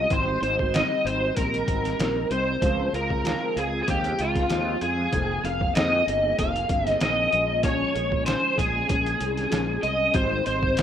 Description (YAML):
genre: indie pop, bedroom pop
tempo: 96 BPM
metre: 4/4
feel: swing 55% on 16ths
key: unclear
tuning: A4 = 440 Hz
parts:
  - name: overdriven slide guitar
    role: melody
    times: 0.0-10.8 s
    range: F4 to F5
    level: -24 LUFS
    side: equal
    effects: ensemble chorus, slapback echo
  - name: mellow electric guitar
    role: accompaniment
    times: 0.0-10.8 s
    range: F2 to Ab4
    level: -30 LUFS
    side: left 2 dB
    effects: ensemble chorus, vibrato effect
  - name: fretless electric bass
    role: bass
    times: 0.0-10.8 s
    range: F1 to F2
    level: -29 LUFS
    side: equal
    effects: ensemble chorus
  - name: trip hop sampler-style drum kit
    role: drums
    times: 0.1-10.8 s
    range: hi-hat, kick drum, snare drum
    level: -28 LUFS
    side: equal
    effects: overdrive
room: light reverb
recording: rough home demo mix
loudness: -22 LUFS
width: side -9 dB against mid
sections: 0.0-10.8 A section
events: none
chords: 0.1 Abmaj7; 2.6 Dbmaj7; 5.1 Fm11; 7.3 Bbm7; 10.1 Abmaj7